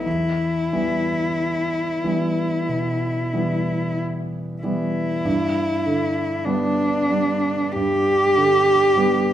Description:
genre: classical, romantic duo for cello and grand piano.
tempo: 44-50 BPM.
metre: 4/4.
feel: rubato.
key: E minor, G major from 5.3 s.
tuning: A4 = 440 Hz.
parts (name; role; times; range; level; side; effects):
warm cello; melody; 0.0-9.3 s; D4 to G4; -20 LUFS; equal; none.
clear grand piano; accompaniment; 0.0-9.3 s; E2 to B3; -23 LUFS; right 1 dB; none.
room: wet recital hall reverb, RT60 1.5 s.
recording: none.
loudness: -19 LUFS.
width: side -11 dB against mid.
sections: 0.0-5.3 A section; 5.3-9.3 B section.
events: none.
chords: 0.1 Em; 5.3 G.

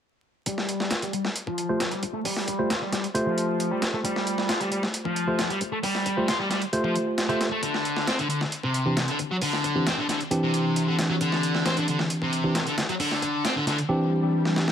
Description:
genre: breakbeat, breaks.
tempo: 134 BPM.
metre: 4/4.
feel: straight.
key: unclear.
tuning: A4 = 440 Hz.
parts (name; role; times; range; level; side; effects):
fuzz guitar; riff; 0.5-13.8 s; C3 to F4; -27 LUFS; left 1 dB; distortion, tube saturation, low-pass filter, ping-pong delay.
dusty soul sampler-style drum kit; drums; 0.5-14.7 s; hi-hat, kick drum, snare drum; -28 LUFS; equal; overdrive, high-pass filter on hats, high-pass filter on kick, high-pass filter on snare.
tine electric piano; stabs; 1.7-14.7 s; E3 to C5; -26 LUFS; equal; low-pass filter, ping-pong delay.
swell; sound effects; 14.1-14.7 s; none; -32 LUFS; equal; none.
room: moderate digital room reverb, RT60 1.1 s.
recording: vinyl crackle.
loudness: -23 LUFS.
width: side -8 dB against mid.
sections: 0.5-14.7 A section.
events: filter sweep on distorted electric guitar 0.5-14.7; swell 14.1-14.7; drum fill 14.5.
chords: 0.5 G9sus4; 7.6 D9sus4.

